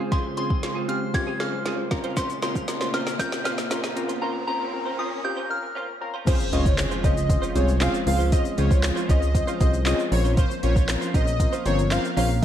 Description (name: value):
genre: dance-pop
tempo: 117 BPM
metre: 4/4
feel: straight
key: Db major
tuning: A4 = 440 Hz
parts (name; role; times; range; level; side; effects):
- warm analog keys; accompaniment; 0.0-12.4 s; C4 to Eb5; -29 LUFS; left 3 dB; chorus, sidechain pumping
- airy breathy pad; sustained chords; 0.0-12.4 s; Bb2 to C5; -33 LUFS; right 1 dB; chorus, sidechain pumping
- direct-recorded clean electric guitar; riff; 0.0-12.4 s; C4 to C5; -34 LUFS; right 6 dB; ensemble chorus
- riser and impact; sound effects; 0.5-8.3 s; none; -36 LUFS; equal; none
- soft synth bell; melody; 0.1-5.7 s; Bb5 to Ab6; -30 LUFS; left 1 dB; chorus, tape echo
- smooth R&B drum kit; drums; 0.1-12.4 s; crash cymbal, handclaps, hi-hat, kick drum, snare drum; -25 LUFS; equal; none
- tube shaker; percussion; 2.2-12.4 s; none; -41 LUFS; left 8 dB; none
- airy dreamy lead; melody; 6.3-12.4 s; C5 to F5; -28 LUFS; equal; chorus, tape echo
- chorused synth bass; bass; 6.5-12.4 s; G1 to Db2; -23 LUFS; equal; sidechain pumping
room: light reverb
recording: dark, warm production, high-pass filter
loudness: -21 LUFS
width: side -10 dB against mid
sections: 0.0-6.3 A section; 6.3-12.4 B section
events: build-up 0.0-6.3; drum fill 0.0-4.2; riser 0.5-6.3; drop 6.3-12.4; impact 6.3-8.3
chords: 0.0 Dbmaj7; 1.9 Bbmadd9; 6.3 Dbmaj7; 10.1 Bbmadd9